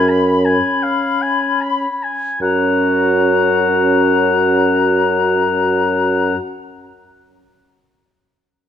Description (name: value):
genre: classical, slow romantic movement for wind quintet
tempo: 40 BPM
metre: 4/4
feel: rubato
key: F# major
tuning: A4 = 439 Hz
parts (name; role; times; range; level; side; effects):
- silver concert flute; melody; 0.0-6.4 s; A#5 to B5; -21 LUFS; left 8 dB; none
- warm oboe; second line; 0.0-6.4 s; E#5 to B5; -19 LUFS; left 4 dB; none
- mellow French horn; accompaniment; 0.0-6.4 s; C#4; -22 LUFS; equal; none
- warm clarinet; accompaniment; 0.0-6.3 s; F#4; -20 LUFS; right 6 dB; none
- mellow bassoon; bass; 0.0-6.3 s; F#2; -18 LUFS; equal; none
room: moderate concert hall reverb, RT60 2.2 s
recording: none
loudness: -13 LUFS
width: side -9 dB against mid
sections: 0.0-2.4 A section; 2.4-8.5 B section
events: slowing down 0.0-2.4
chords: 0.0 C#7(no3)/F#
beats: 0.82 | 2.41 3.92 5.47